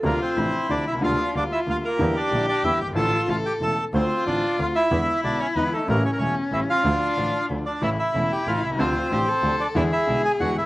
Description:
tango; 186 BPM; 3/4; rubato; D minor; A4 = 440 Hz
clear concert grand piano; accompaniment; 0.0-10.6 s; E1 to F4; -27 LUFS; equal; slapback echo
rich double bass; bass; 0.0-10.7 s; E1 to E2; -29 LUFS; right 1 dB
bandoneon; melody; 0.1-10.6 s; A3 to A5; -24 LUFS; right 1 dB
dark cello; second line; 0.1-10.7 s; C#4 to A4; -27 LUFS; left 2 dB; slapback echo
rich studio string section; stabs; 7.8-10.5 s; G#3 to F4; -33 LUFS; right 1 dB
little or no reverb; recorded outdoors, with no room sound, nothing above 10.6 kHz; -20 LUFS; side -18 dB against mid
0.0-10.7 A section
0.0 Dm7; 1.0 Gm7/D; 2.0 Em7b5; 3.0 Dm/A; 3.3 A; 3.9 Dm7; 4.9 E7; 5.9 A7; 6.8 Dm; 7.8 A; 8.8 Dm7; 9.8 E7
| 0.04 0.37 0.70 | 1.02 1.35 1.67 | 1.99 2.32 2.64 | 2.96 3.29 3.61 | 3.94 4.26 4.59 | 4.91 5.24 5.56 | 5.88 6.20 6.52 | 6.84 7.17 7.49 | 7.82 8.14 8.47 | 8.79 9.11 9.44 | 9.76 10.08 10.40

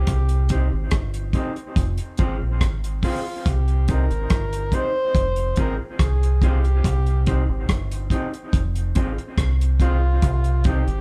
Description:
roots reggae; 71 BPM; 4/4; straight; C minor; A4 = 440 Hz
warm flugelhorn; melody; 0.0-11.0 s; F4 to C5; -30 LUFS; equal
deep dub fingered electric bass; bass; 0.0-11.0 s; F1 to C2; -23 LUFS; equal
damped 70s drum kit; drums; 0.1-11.0 s; hi-hat, kick drum, rim click; -25 LUFS; equal
mellow electric guitar; accompaniment; 0.5-10.8 s; C4 to C5; -33 LUFS; equal; tape echo
moderate studio reverb, RT60 0.8 s; band playing live in one room; -21 LUFS; mono
0.0-11.0 A section
0.1 Cm; 1.8 Fm; 3.5 Cm; 5.2 Fm; 6.8 Cm; 8.5 Fm; 10.2 Cm
| 0.08 0.92 1.77 2.61 | 3.46 4.30 5.15 6.00 | 6.84 7.69 8.53 9.38 | 10.22

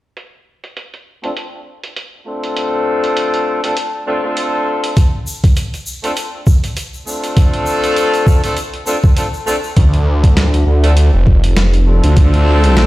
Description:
glitch hop; 100 BPM; 4/4; swing 57% on 16ths; A4 = 440 Hz
boom bap sampler-style drum kit; drums; 0.2-12.9 s; hi-hat, snare drum; -22 LUFS; right 1 dB; low-pass filter on hats, small room ambience, low-pass filter on snare
clear horn section; stabs; 1.2-12.9 s; A3 to A4; -17 LUFS; left 1 dB; sidechain pumping, low-pass filter, digital delay
electronic kick drum; drums; 5.0-12.3 s; -10 LUFS; equal; small room ambience
tube shaker; percussion; 5.0-9.7 s; -29 LUFS; left 2 dB
phased detuned saw bass; bass; 9.8-12.9 s; F1 to D2; -10 LUFS; equal; phaser
light reverb, small room ambience; played on a big sound system in a bare room, stone room reverb; -12 LUFS; side -17 dB against mid
0.2-9.8 A section; 9.8-12.9 B section
filter sweep on horn section 0.2-9.8
0.2 F6; 9.8 Dm7
| 0.17 0.77 1.37 1.97 | 2.57 3.17 3.77 4.37 | 4.97 5.57 6.17 6.77 | 7.37 7.97 8.57 9.17 | 9.77 10.37 10.97 11.57 | 12.17 12.77

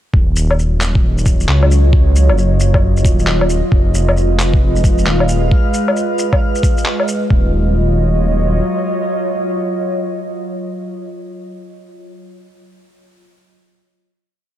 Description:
future garage; 134 BPM; 4/4; swing 64% on 16ths; Eb minor; A4 = 441 Hz
warbly tape-like pad; sustained chords; 0.5-11.4 s; Gb3 to Eb5; -20 LUFS; equal; chorus, built-in reverb, sidechain pumping
dark detuned saw bass; bass; 0.1-8.6 s; Eb1 to Db2; -14 LUFS; equal; sidechain pumping
electronic kick drum; drums; 0.1-7.4 s; -13 LUFS; equal; overdrive, small room ambience
electronic shaker, woodblock and handclaps; drums; 0.4-7.2 s; -20 LUFS; left 1 dB; overdrive, small room ambience
backwards swelling texture; texture; 4.3-5.5 s; F4 to F5; -28 LUFS; equal; built-in reverb
little or no reverb; -12 LUFS; side -12 dB against mid
0.1-7.3 groove; 7.3-10.9 final chord
0.1 Ebm9; 3.7 Fm7b5; 7.3 Ebm9
| 0.14 0.59 1.04 1.49 | 1.93 2.38 2.83 3.28 | 3.72 4.17 4.62 5.07 | 5.51 5.96 6.41 6.86 | 7.31 7.75 8.20 8.65 | 9.10 9.54 9.99 10.44

